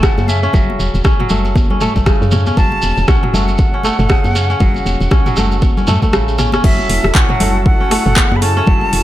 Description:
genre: afro house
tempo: 118 BPM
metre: 4/4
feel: swing 59% on 16ths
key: F# minor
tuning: A4 = 441 Hz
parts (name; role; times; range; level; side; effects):
- bright silver concert flute; melody; 0.0-9.0 s; E5 to B5; -21 LUFS; equal; ping-pong delay
- kora; arpeggios; 0.0-9.0 s; C#3 to C#4; -19 LUFS; equal; sidechain pumping, ping-pong delay
- woody FM bass; bass; 0.0-9.0 s; E1 to F#2; -17 LUFS; equal; sidechain pumping
- deep house drum kit; drums; 0.0-9.0 s; crash cymbal, handclaps, hi-hat, rim click, toms; -19 LUFS; equal; overdrive, small room reverb
- electronic kick drum; drums; 0.0-8.8 s; none; -14 LUFS; equal; overdrive, small room reverb
- congas; percussion; 0.0-8.9 s; none; -22 LUFS; left 2 dB; none
- shekere; percussion; 0.0-6.6 s; none; -26 LUFS; right 3 dB; none
- warm analog pad; sustained chords; 6.6-9.0 s; E4 to A4; -24 LUFS; right 1 dB; wide subtle chorus, sidechain pumping
room: small room ambience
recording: none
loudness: -11 LUFS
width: side -14 dB against mid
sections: 0.0-6.6 A section; 6.6-9.0 B section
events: kick drops out 6.1-6.6; drum fill 6.4; drop 6.6-9.0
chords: 0.0 F#m

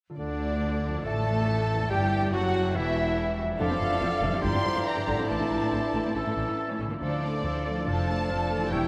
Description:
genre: classical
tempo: 141 BPM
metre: 4/4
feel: straight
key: D minor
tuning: A4 = 440 Hz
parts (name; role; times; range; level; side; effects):
- concert harp; arpeggios; 0.1-8.9 s; E2 to E5; -37 LUFS; equal; none
- warm symphonic violin section; melody; 0.2-8.9 s; D5 to C6; -35 LUFS; equal; none
- clear oboe; second line; 0.2-8.9 s; D4 to C#5; -40 LUFS; equal; none
- clear symphonic violin section; second line; 0.2-8.9 s; D4 to D5; -40 LUFS; equal; none
- dark clarinet; second line; 0.2-8.9 s; C#4 to A4; -40 LUFS; equal; none
- mellow concert flute; second line; 0.2-8.9 s; D5 to F6; -39 LUFS; equal; none
- clear chamber viola section; accompaniment; 0.2-8.9 s; D3 to E4; -37 LUFS; equal; none
- warm bassoon; accompaniment; 0.2-8.9 s; D3 to A3; -37 LUFS; equal; none
- rich symphonic cello section; bass; 0.2-8.9 s; D2 to A2; -36 LUFS; equal; none
- rich symphonic double bass section; bass; 0.2-8.9 s; E1 to D2; -35 LUFS; equal; none
room: wet cathedral reverb, RT60 7.0 s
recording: in a vast, echoing space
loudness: -27 LUFS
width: mono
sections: 0.2-8.9 A section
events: none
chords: 0.2 Dm; 1.1 Dm/A; 1.9 C#dim; 3.6 Dm/F; 4.4 Gm; 5.3 Asus4; 6.2 A; 7.0 Dm; 7.9 Dm/F

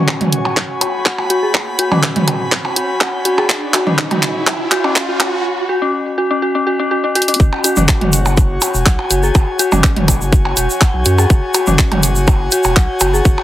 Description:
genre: minimal techno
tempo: 123 BPM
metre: 4/4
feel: straight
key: unclear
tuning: A4 = 440 Hz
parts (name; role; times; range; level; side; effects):
- riser; sound effects; 1.7-5.4 s; none; -24 LUFS; right 2 dB; none
- airy breathy pad; texture; 0.0-13.4 s; F#4 to C#6; -22 LUFS; left 1 dB; chorus, sidechain pumping
- electronic kick drum; drums; 0.1-13.4 s; none; -12 LUFS; equal; high-pass filter on kick
- garage drum kit; drums; 0.1-13.1 s; handclaps, hi-hat; -16 LUFS; equal; none
- electronic percussion blips and toms; percussion; 0.1-13.4 s; none; -19 LUFS; right 1 dB; digital delay
- dark detuned synth bell; riff; 0.2-13.2 s; C#4 to F#5; -18 LUFS; left 1 dB; chorus, sidechain pumping, low-pass filter, digital delay
- round analog bass; bass; 7.4-13.4 s; E1 to F#2; -17 LUFS; equal; sidechain pumping
- tube shaker; percussion; 7.4-13.4 s; none; -22 LUFS; right 1 dB; none
room: light reverb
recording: heavily compressed radio sound, high-pass filter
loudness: -12 LUFS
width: side -13 dB against mid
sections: 0.0-7.4 A section; 7.4-13.4 B section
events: build-up 0.0-7.4; drum fill 0.0-5.4, 7.2; filter sweep on synth bell 0.0-7.4; riser 1.7-5.4; drop 7.4-13.4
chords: 0.0 F#sus4; 7.4 F#5

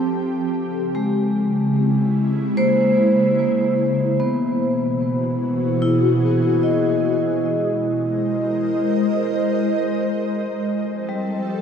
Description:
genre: ambient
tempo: 74 BPM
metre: 4/4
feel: straight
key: unclear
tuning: A4 = 440 Hz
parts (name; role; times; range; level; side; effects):
- ethereal airy pad; sustained chords; 0.0-11.6 s; B2 to Eb5; -21 LUFS; equal; ensemble chorus, built-in reverb, phaser
- vibraphone with medium hard mallets; arpeggios; 0.0-11.6 s; G3 to D#5; -20 LUFS; equal; tape echo
room: wet huge ambient reverb, RT60 8.9 s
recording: none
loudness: -18 LUFS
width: side -7 dB against mid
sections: 0.0-11.6 A section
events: none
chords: 0.0 Fadd9; 0.5 Dbm6; 3.8 Emaj7; 7.0 Ab; 10.3 F9

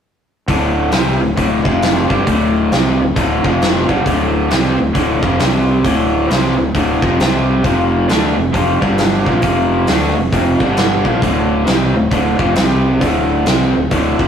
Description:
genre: blues rock power trio and southern rock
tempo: 134 BPM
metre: 4/4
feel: swing 62% on 8ths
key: D minor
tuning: A4 = 440 Hz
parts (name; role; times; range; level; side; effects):
- raw garage guitar; riff; 0.5-14.3 s; D2 to D4; -14 LUFS; equal; overdrive
- fuzz fingered electric bass; bass; 0.5-14.3 s; D1 to D2; -20 LUFS; equal; overdrive
- big rock drum kit; drums; 0.5-14.3 s; hi-hat, kick drum, snare drum; -17 LUFS; right 1 dB; none
room: moderate stone room reverb, RT60 1.0 s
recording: rough rehearsal-room recording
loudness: -12 LUFS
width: side -8 dB against mid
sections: 0.5-14.3 A section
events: none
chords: 0.5 D5; 1.6 F5; 2.0 D5; 3.4 F5; 3.8 Dm; 5.4 C5; 5.8 Dm; 7.2 C5; 7.6 F5; 8.8 G5; 9.2 F5; 10.6 G5; 11.0 Bb5; 11.2 Dm; 12.6 C5; 13.0 Dm

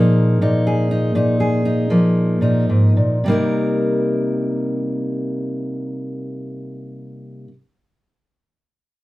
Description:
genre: folk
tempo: 53-66 BPM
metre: 4/4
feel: straight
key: C minor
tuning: A4 = 440 Hz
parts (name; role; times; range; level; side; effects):
- fingerpicked steel-string acoustic guitar; accompaniment; 0.0-7.5 s; Ab2 to Bb4; -17 LUFS; equal; none
room: moderate studio ambience, RT60 0.5 s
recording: band playing live in one room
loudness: -16 LUFS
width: side -18 dB against mid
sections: 0.0-3.2 A section; 3.2-7.8 B section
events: slowing down 0.0-3.2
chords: 0.0 Bb7sus4; 3.2 Cm7

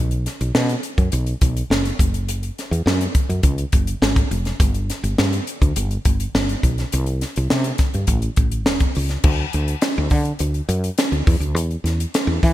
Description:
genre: polished 1980s jazz-funk pop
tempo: 104 BPM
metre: 4/4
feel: straight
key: unclear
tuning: A4 = 439 Hz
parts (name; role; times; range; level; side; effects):
- woody fretless electric bass; bass; 0.0-12.5 s; E1 to E3; -21 LUFS; equal; none
- crisp fusion drum kit; drums; 0.1-12.5 s; crash cymbal, hi-hat, kick drum, snare drum; -19 LUFS; equal; gated reverb
room: little or no reverb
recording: bright 1980s-style digital production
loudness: -18 LUFS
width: side -14 dB against mid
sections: 0.0-9.2 A section; 9.2-12.5 B section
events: none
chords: none

